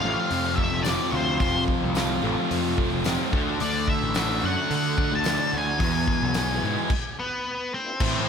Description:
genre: classic rock.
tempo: 109 BPM.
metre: 4/4.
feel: straight.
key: unclear.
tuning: A4 = 440 Hz.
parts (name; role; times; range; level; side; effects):
octave-fuzz lead guitar; melody; 0.0-8.3 s; B3 to A5; -28 LUFS; left 1 dB; wah, distortion.
tonewheel organ; sustained chords; 0.0-8.3 s; A3 to F5; -41 LUFS; left 1 dB; none.
distorted electric guitar; riff; 0.0-8.3 s; E2 to D4; -28 LUFS; left 10 dB; distortion.
overdriven electric guitar; riff; 0.0-8.3 s; E2 to G#4; -29 LUFS; right 8 dB; none.
fuzz picked electric bass; bass; 0.0-8.3 s; F1 to D3; -29 LUFS; equal; overdrive.
big rock drum kit; drums; 0.3-8.1 s; crash cymbal, hi-hat, kick drum, snare drum; -28 LUFS; equal; none.
tambourine; percussion; 0.8-8.1 s; none; -40 LUFS; left 11 dB; none.
room: light reverb.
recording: none.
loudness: -22 LUFS.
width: side -7 dB against mid.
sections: 0.0-8.0 A section.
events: stop 6.9-8.0.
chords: 0.0 F; 3.3 D; 5.8 E.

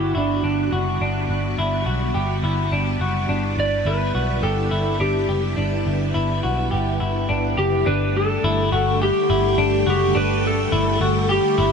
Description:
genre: dream pop.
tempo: 105 BPM.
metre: 4/4.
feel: straight.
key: G major.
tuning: A4 = 440 Hz.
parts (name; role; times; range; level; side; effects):
electric slide guitar; melody; 0.0-11.7 s; D4 to D5; -23 LUFS; equal; ping-pong delay.
string machine, violins; sustained chords; 0.0-11.7 s; D3 to G4; -25 LUFS; equal; ensemble chorus.
semi-hollow electric guitar; arpeggios; 0.0-11.7 s; D4 to G4; -24 LUFS; left 2 dB; lush chorus, ping-pong delay.
vintage muted picked electric bass; bass; 0.0-11.7 s; F#1 to B1; -23 LUFS; equal; none.
room: moderate huge ambient reverb, RT60 4.0 s.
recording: nothing above 10.8 kHz.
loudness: -18 LUFS.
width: side -6 dB against mid.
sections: 0.0-7.9 A section; 7.9-11.7 B section.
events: none.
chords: 0.0 Gmaj7; 7.9 Gsus2.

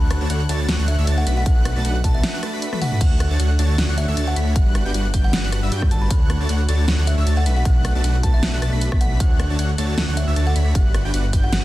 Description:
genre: future bass.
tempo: 155 BPM.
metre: 4/4.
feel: swing 54% on 16ths, half-time.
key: D major.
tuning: A4 = 440 Hz.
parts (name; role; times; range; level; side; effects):
airy dreamy lead; arpeggios; 0.0-11.6 s; E6 to B6; -32 LUFS; equal; chorus, sidechain pumping, digital delay.
supersaw chords; riff; 0.0-11.6 s; G3 to B5; -27 LUFS; right 1 dB; sidechain pumping.
wide detuned saw bass; bass; 0.0-11.6 s; G1 to G2; -19 LUFS; equal; chorus, sidechain pumping.
big-room dance drum kit; drums; 0.1-11.6 s; crash cymbal, hi-hat, rim click, snare drum, toms; -25 LUFS; equal; small room ambience.
kalimba; melody; 0.9-11.6 s; E5 to B5; -32 LUFS; left 1 dB; sidechain pumping, digital delay.
electronic kick drum; drums; 1.5-11.4 s; none; -18 LUFS; equal; small room ambience.
room: digital ambience.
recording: dense, heavily limited modern master.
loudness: -17 LUFS.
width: side -16 dB against mid.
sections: 0.0-11.6 A section.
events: break 2.2-3.0; drum fill 2.7.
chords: 0.0 Dmaj7; 1.3 Bm7; 3.0 Dmaj7; 4.6 Gmaj7; 6.1 Dmaj7; 7.5 Bm7; 9.2 Dmaj7; 10.8 Gmaj7.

